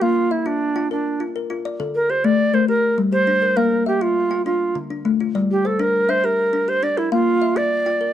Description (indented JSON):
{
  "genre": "southern african traditional",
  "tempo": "135 BPM (dotted quarters)",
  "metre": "12/8",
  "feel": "straight",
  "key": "G dorian",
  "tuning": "A4 = 440 Hz",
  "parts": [
    { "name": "bright low Native American-style wooden flute", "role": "melody", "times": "0.0-8.1 s", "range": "D4 to D5", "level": "-19 LUFS", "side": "right 2 dB", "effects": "none" },
    { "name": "kalimba", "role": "arpeggios", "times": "0.0-8.1 s", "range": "D3 to G5", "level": "-21 LUFS", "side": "left 4 dB", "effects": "none" }
  ],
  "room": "studio reverb",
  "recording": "dry, close 1970s-style studio recording",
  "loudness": "-17 LUFS",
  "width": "side -11 dB against mid",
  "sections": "0.0-8.1 A section",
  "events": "none",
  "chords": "0.0 Bb; 1.8 D5; 2.7 Gm; 3.6 Bb5; 4.5 Dm; 5.3 Gm; 7.1 Bb"
}